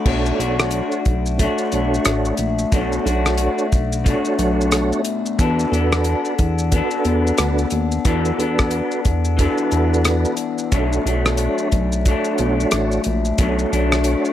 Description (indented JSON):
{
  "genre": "indie pop, bedroom pop",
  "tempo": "90 BPM",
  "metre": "4/4",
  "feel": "swing 60% on 16ths",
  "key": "B minor",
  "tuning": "A4 = 437 Hz",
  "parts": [
    { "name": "electric guitar through a small old amp", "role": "accompaniment", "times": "0.0-14.3 s", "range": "B2 to A4", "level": "-22 LUFS", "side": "left 5 dB", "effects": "wide subtle chorus, vibrato effect" },
    { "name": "mellow tonewheel organ", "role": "accompaniment", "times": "0.1-14.3 s", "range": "C#4 to C#5", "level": "-23 LUFS", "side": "right 4 dB", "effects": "chorus vibrato, fast rotary speaker" },
    { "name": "chorused synth bass", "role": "bass", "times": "0.1-14.2 s", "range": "A1 to E2", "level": "-20 LUFS", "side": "equal", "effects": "none" },
    { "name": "damped 70s drum kit", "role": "drums", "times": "0.1-14.3 s", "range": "crash cymbal, hi-hat, kick drum, rim click, shaker", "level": "-21 LUFS", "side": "equal", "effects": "none" }
  ],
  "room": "small room reverb",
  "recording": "none",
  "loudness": "-16 LUFS",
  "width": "side -11 dB against mid",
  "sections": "0.1-14.3 A section",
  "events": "none",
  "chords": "0.1 Bm7; 5.4 E7sus4; 10.7 Bm7"
}